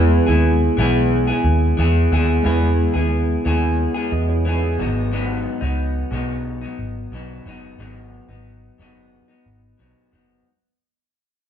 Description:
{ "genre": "indie pop, bedroom pop", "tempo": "90 BPM", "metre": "4/4", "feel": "straight", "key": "unclear", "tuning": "A4 = 440 Hz", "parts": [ { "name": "barky tine electric piano", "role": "accompaniment", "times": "0.0-5.1 s", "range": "G#3 to D#5", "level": "-26 LUFS", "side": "right 4 dB", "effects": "medium stereo tremolo" }, { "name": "electric guitar through a small old amp", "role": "accompaniment", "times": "0.0-10.5 s", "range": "G#2 to G#4", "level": "-21 LUFS", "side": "left 2 dB", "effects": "warbly pitch drift" }, { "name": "vintage muted picked electric bass", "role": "bass", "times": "0.0-10.4 s", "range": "F#1 to E2", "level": "-20 LUFS", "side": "right 1 dB", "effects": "none" } ], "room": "wet large studio reverb, RT60 1.2 s", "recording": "band playing live in one room", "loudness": "-17 LUFS", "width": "side -9 dB against mid", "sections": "0.0-10.5 A section", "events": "fade-out 0.0-10.5", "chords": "0.0 E; 4.8 G#m7" }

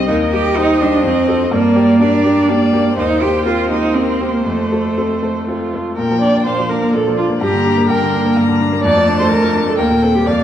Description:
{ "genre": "quick classical-period movement for piano quartet", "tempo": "125 BPM", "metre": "3/4", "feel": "straight", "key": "Bb major", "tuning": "A4 = 440 Hz", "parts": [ { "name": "rich violin", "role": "melody", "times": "0.0-10.4 s", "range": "A4 to Bb5", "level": "-22 LUFS", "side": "left 9 dB", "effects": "none" }, { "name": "bright cello", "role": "second line", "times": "0.0-10.4 s", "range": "A3 to G4", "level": "-16 LUFS", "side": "right 3 dB", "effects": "none" }, { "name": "bright grand piano", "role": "accompaniment", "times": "0.0-10.4 s", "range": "C2 to A4", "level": "-18 LUFS", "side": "left 2 dB", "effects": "none" }, { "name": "rich viola", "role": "accompaniment", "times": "0.0-10.4 s", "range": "F4 to Eb5", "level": "-19 LUFS", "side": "right 1 dB", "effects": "none" } ], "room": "wet recital hall reverb, RT60 1.7 s", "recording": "dark, warm production", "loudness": "-12 LUFS", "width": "side -10 dB against mid", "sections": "0.0-6.0 A section; 6.0-10.4 B section", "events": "none", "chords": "0.1 Eb; 1.0 F7; 1.5 Gm; 3.0 Cm7/Eb; 4.5 F; 6.0 Bb; 7.4 Gm; 8.8 Dm/F; 9.8 Cm7/Eb" }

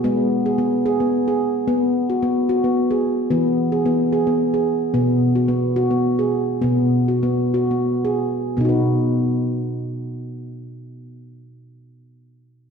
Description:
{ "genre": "world meditative", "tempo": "83-110 BPM", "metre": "3/4", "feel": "straight", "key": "B major", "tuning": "A4 = 440 Hz", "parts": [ { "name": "handpan", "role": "arpeggios", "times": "0.0-12.0 s", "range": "B2 to B4", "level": "-18 LUFS", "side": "equal", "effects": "none" } ], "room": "wet concert hall reverb, RT60 1.9 s, small room reverb", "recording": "none", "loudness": "-17 LUFS", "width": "side -6 dB against mid", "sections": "0.0-8.6 A section; 8.6-12.7 B section", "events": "slowing down 4.9-8.6", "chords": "0.0 G#m; 1.7 B5; 3.3 E; 4.9 B5; 8.6 B" }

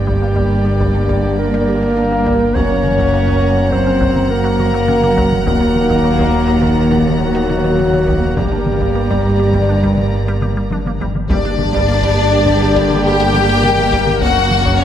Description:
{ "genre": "cinematic, hybrid orchestral and electronic film score", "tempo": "103 BPM", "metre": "5/4", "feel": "straight", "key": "G harmonic minor", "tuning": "A4 = 444 Hz", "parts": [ { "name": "mellow duduk", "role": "melody", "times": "0.0-10.7 s", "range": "Gb4 to C#5", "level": "-21 LUFS", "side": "right 3 dB", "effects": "none" }, { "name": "warm symphonic violin section", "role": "melody", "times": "0.0-14.8 s", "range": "C#5 to A#5", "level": "-23 LUFS", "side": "left 5 dB", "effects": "none" }, { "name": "warm symphonic violin section", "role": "second line", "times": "0.0-14.8 s", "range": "C#4 to F#5", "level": "-22 LUFS", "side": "left 3 dB", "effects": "none" }, { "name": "warm symphonic viola section", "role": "accompaniment", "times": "0.0-14.8 s", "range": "Bb3 to G4", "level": "-23 LUFS", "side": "right 2 dB", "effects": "none" }, { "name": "dark French horn section", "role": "sustained chords", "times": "0.0-14.8 s", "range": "Gb3 to Bb4", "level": "-19 LUFS", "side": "left 3 dB", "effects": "none" }, { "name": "dark trombone section", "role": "sustained chords", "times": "0.0-14.8 s", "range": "C#3 to Bb3", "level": "-24 LUFS", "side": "right 2 dB", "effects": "none" }, { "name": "dark symphonic double bass section", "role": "bass", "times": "0.0-14.8 s", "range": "F#1 to Eb2", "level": "-21 LUFS", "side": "right 2 dB", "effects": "none" }, { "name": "pure sine sub bass", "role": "bass", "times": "0.0-14.8 s", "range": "Eb1 to G1", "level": "-25 LUFS", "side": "equal", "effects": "none" }, { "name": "warm symphonic cello section", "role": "bass", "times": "0.0-14.8 s", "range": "Eb2 to G2", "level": "-20 LUFS", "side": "right 1 dB", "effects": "none" }, { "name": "resonant blip pluck", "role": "arpeggios", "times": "0.1-14.8 s", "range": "Eb3 to G4", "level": "-25 LUFS", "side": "right 1 dB", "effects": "phaser, digital delay" }, { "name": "taiko ensemble", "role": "drums", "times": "0.1-14.8 s", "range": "none", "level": "-22 LUFS", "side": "left 1 dB", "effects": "none" } ], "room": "moderate scoring stage reverb, RT60 2.0 s", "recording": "none", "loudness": "-12 LUFS", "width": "side -10 dB against mid", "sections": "0.0-11.3 A section; 11.3-14.8 B section", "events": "none", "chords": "0.0 Gm; 2.6 F#; 5.5 Ebm; 8.4 Gm; 14.2 F#" }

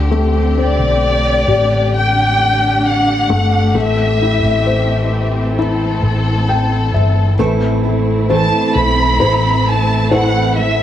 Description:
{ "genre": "pop", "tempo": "66 BPM", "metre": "4/4", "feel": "straight", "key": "unclear", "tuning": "A4 = 437 Hz", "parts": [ { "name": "felt-muted upright piano", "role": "accompaniment", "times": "0.0-10.8 s", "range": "D3 to G5", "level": "-20 LUFS", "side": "left 4 dB", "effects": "none" }, { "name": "warm studio string section", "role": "sustained chords", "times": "0.0-10.8 s", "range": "D3 to A4", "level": "-21 LUFS", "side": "equal", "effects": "none" }, { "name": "hollow-body short-scale fingered electric bass", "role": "bass", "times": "0.0-10.8 s", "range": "G1 to D2", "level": "-16 LUFS", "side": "equal", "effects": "none" }, { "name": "dark studio violin section", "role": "melody", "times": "0.6-10.8 s", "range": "D5 to B5", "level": "-16 LUFS", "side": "left 1 dB", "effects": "none" }, { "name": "fingerpicked steel-string acoustic guitar", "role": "arpeggios", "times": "7.4-10.8 s", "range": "A2 to A4", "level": "-19 LUFS", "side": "right 6 dB", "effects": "none" } ], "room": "light reverb, small room ambience", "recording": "none", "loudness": "-12 LUFS", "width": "side -11 dB against mid", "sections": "0.0-7.4 A section; 7.4-10.8 B section", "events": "felt piano fill 6.0-7.4", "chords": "0.0 D7sus4; 3.8 Am7; 7.4 Am" }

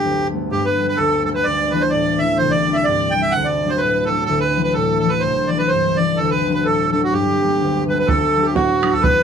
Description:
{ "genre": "celtic folk, Celtic polka", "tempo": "127 BPM", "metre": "2/4", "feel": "swing 57% on 8ths", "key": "unclear", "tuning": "A4 = 444 Hz", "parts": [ { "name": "accordion", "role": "melody", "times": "0.0-9.2 s", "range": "F#4 to G5", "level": "-19 LUFS", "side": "right 3 dB", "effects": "none" }, { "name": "concert harp", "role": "accompaniment", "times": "0.0-9.2 s", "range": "C2 to D4", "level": "-20 LUFS", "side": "left 3 dB", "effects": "none" }, { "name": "accordion", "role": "second line", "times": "0.5-9.2 s", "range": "F#4 to G5", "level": "-22 LUFS", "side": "equal", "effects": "light tremolo tuning" }, { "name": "bodhran", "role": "percussion", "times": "8.1-9.2 s", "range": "none", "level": "-20 LUFS", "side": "right 4 dB", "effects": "none" } ], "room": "light reverb", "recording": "close, detailed microphones", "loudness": "-15 LUFS", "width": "side -7 dB against mid", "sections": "0.5-8.1 A section; 8.1-9.2 B section", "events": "none", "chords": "0.0 Gadd9; 1.5 Dsus2; 2.4 Csus2; 3.3 D; 4.3 Dadd9; 5.2 Cadd9; 6.2 D7; 7.1 Gadd9; 8.1 D" }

